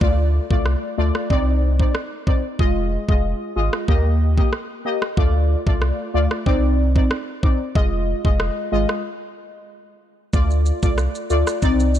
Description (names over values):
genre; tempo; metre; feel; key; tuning
dancehall; 93 BPM; 4/4; straight; unclear; A4 = 440 Hz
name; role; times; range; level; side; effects
synth brass stab; accompaniment; 0.0-12.0 s; Ab3 to Eb5; -23 LUFS; left 1 dB; chorus
saturated sub bass; bass; 0.0-12.0 s; F1 to Eb2; -19 LUFS; equal; none
pop drum kit; drums; 0.0-12.0 s; kick drum, rim click, shaker; -20 LUFS; equal; none
room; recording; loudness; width
digital ambience; dark, warm production; -17 LUFS; side -11 dB against mid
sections
0.0-12.0 A section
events
break 0.0-10.3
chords
0.0 Dm; 1.3 Cmadd9; 2.6 Fm7; 3.9 Eb; 5.2 Dm; 6.5 Cmadd9; 7.8 Fm7; 9.0 N.C.; 10.3 Dm